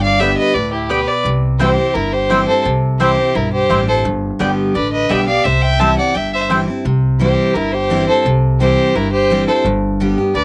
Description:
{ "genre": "bluegrass", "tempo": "172 BPM", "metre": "4/4", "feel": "straight", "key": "C major", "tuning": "A4 = 438 Hz", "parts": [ { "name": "clear fiddle", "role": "melody", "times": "0.0-10.4 s", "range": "G4 to A5", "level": "-20 LUFS", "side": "equal", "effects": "cassette tape" }, { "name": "clear fiddle", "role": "second line", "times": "0.0-10.4 s", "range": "E4 to E5", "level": "-24 LUFS", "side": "equal", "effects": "cassette tape" }, { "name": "picked steel-string acoustic guitar", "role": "accompaniment", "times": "0.0-10.4 s", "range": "G2 to G4", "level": "-21 LUFS", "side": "equal", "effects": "cassette tape" }, { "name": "upright bass", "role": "bass", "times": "0.0-10.4 s", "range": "G1 to D2", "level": "-22 LUFS", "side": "equal", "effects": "none" }, { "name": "mandolin", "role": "stabs", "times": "0.2-6.6 s", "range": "B3 to G5", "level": "-20 LUFS", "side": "equal", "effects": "cassette tape" } ], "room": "light reverb", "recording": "home recording on cassette", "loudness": "-15 LUFS", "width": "mono", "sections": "0.0-6.9 A section; 6.9-10.4 A section", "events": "none", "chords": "0.0 G; 1.3 C; 4.1 G; 5.5 C; 9.6 G", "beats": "0.20 0.55 0.90 | 1.25 1.60 1.95 2.30 | 2.65 3.00 3.35 3.70 | 4.05 4.40 4.75 5.10 | 5.45 5.80 6.15 6.50 | 6.85 7.20 7.55 7.90 | 8.25 8.60 8.95 9.30 | 9.65 10.00 10.35" }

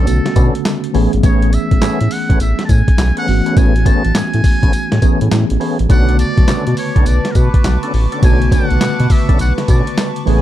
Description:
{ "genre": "R&B, new jack swing", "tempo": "103 BPM", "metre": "4/4", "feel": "swing 64% on 16ths", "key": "B dorian", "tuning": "A4 = 440 Hz", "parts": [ { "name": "trumpet with metal mute", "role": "melody", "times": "0.0-10.1 s", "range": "A4 to A5", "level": "-23 LUFS", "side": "equal", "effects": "none" }, { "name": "mellow tine electric piano", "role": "accompaniment", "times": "0.0-10.4 s", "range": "C#3 to G#4", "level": "-19 LUFS", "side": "equal", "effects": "medium stereo tremolo" }, { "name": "percussive tonewheel organ", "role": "stabs", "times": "0.0-10.4 s", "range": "A3 to A4", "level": "-24 LUFS", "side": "right 1 dB", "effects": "overdrive, chorus vibrato, slow rotary speaker" }, { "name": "round analog bass", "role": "bass", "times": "0.0-10.4 s", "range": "G#1 to B2", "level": "-14 LUFS", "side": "equal", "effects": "none" }, { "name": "dusty soul sampler-style drum kit", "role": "drums", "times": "0.1-10.4 s", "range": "handclaps, hi-hat, kick drum, snare drum, tambourine", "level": "-14 LUFS", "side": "equal", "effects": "none" }, { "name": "chorused pulse-width pad", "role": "sustained chords", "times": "5.9-10.4 s", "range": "A3 to D6", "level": "-26 LUFS", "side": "left 2 dB", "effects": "none" } ], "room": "little or no reverb", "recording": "dark, warm production", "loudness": "-11 LUFS", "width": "side -13 dB against mid", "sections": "0.0-10.4 A section", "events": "none", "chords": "0.0 Bm9; 0.9 Amaj9; 5.9 Bm9", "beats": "0.07 0.65 | 1.24 1.82 2.40 2.98 | 3.57 4.15 4.73 5.31 | 5.90 6.48 7.06 7.64 | 8.23 8.81 9.39 9.97" }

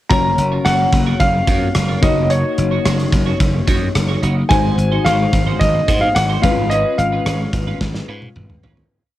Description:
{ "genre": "1980s-style pop", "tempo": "109 BPM", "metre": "4/4", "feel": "straight", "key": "F# major", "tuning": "A4 = 440 Hz", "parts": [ { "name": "warm grand piano", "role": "melody", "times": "0.1-7.8 s", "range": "C#5 to A#5", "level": "-19 LUFS", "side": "equal", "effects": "cassette tape, shimmer reverb" }, { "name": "FM electric piano", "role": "accompaniment", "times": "0.1-8.9 s", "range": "G#3 to C#5", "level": "-22 LUFS", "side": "left 6 dB", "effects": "chorus, shimmer reverb" }, { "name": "twelve-string electric guitar", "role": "riff", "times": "0.1-8.8 s", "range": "C#4 to C#5", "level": "-28 LUFS", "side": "right 8 dB", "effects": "analog chorus, shimmer reverb" }, { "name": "glassy slap bass", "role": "bass", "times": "0.1-8.8 s", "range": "F#1 to G#2", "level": "-18 LUFS", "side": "equal", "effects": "none" }, { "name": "gated 80s drum kit", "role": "drums", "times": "0.1-8.9 s", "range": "hi-hat, kick drum, rim click, snare drum, toms", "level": "-19 LUFS", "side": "equal", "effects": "cassette tape" } ], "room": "moderate studio reverb, RT60 0.5 s", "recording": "home recording on cassette", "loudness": "-14 LUFS", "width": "side -14 dB against mid", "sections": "0.1-8.9 verse", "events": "fade-out 6.7-8.9; drum fill 7.8-8.9", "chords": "0.1 F#maj7; 2.0 D#m7/F#; 4.5 G#7; 6.4 C#7/G#", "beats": "| 0.10 0.65 1.20 1.75 | 2.31 2.85 3.41 3.96 | 4.51 5.06 5.61 6.16 | 6.71 7.26 7.81 8.36" }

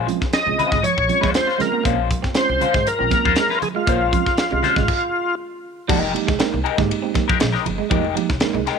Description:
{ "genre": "funk", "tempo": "119 BPM", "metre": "4/4", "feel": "straight", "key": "F minor", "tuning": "A4 = 441 Hz", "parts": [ { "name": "clean electric guitar", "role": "accompaniment", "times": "0.0-8.8 s", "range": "Ab3 to C5", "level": "-24 LUFS", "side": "left 14 dB", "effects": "wah" }, { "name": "upright bass", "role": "bass", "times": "0.0-8.6 s", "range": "F1 to Eb2", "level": "-27 LUFS", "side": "left 1 dB", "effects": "none" }, { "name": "semi-hollow electric guitar", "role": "riff", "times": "0.1-8.7 s", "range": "F3 to Db4", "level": "-27 LUFS", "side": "right 13 dB", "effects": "spring reverb" }, { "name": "mellow tine electric piano", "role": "stabs", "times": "0.1-8.6 s", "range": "Ab3 to Bb4", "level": "-27 LUFS", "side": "right 12 dB", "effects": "medium stereo tremolo" }, { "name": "tight funk drum kit", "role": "drums", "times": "0.1-8.8 s", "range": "crash cymbal, hi-hat, kick drum, ride cymbal, snare drum", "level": "-22 LUFS", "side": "left 1 dB", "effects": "none" }, { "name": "congas", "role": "percussion", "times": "0.1-8.7 s", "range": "none", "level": "-31 LUFS", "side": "right 10 dB", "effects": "none" }, { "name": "overdriven tonewheel organ", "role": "melody", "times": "0.3-5.4 s", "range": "F4 to Eb5", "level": "-20 LUFS", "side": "left 1 dB", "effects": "chorus vibrato, slow rotary speaker" } ], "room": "light reverb, small room ambience", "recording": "1960s-style stereo with parts hard left and right", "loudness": "-17 LUFS", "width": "side -6 dB against mid", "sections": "0.0-5.9 A section; 5.9-8.8 B section", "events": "stop 4.9-5.9", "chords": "0.0 Bbm9; 5.9 Fm11", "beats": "0.33 0.84 1.35 | 1.85 2.36 2.86 3.37 | 3.87 4.38 4.88 5.39 | 5.89 6.40 6.90 7.41 | 7.91 8.42" }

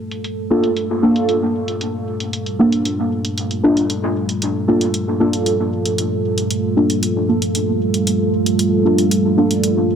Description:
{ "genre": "dub techno", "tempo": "115 BPM", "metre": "4/4", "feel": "straight", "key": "G minor", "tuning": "A4 = 441 Hz", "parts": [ { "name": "deep dark ambient pad", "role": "sustained chords", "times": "0.0-10.0 s", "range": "G3 to A4", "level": "-19 LUFS", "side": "right 1 dB", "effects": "chorus, built-in reverb" }, { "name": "electronic hi-hat", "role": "drums", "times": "0.1-9.7 s", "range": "none", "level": "-24 LUFS", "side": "equal", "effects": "low-pass filter on hats" }, { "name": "deep mellow chord stab", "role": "stabs", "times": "0.5-9.7 s", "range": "Bb3 to A4", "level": "-18 LUFS", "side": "equal", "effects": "chorus, phaser, dub echo" } ], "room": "moderate spring reverb, RT60 1.7 s, digital ambience", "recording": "none", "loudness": "-15 LUFS", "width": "side -7 dB against mid", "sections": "0.0-10.0 A section", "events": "filter sweep on synth stab 0.0-10.0", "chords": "0.0 Gm9", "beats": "0.24 0.77 1.29 | 1.81 2.33 2.85 3.37 | 3.90 4.42 4.94 5.46 | 5.98 6.50 7.03 7.55 | 8.07 8.59 9.11 9.63" }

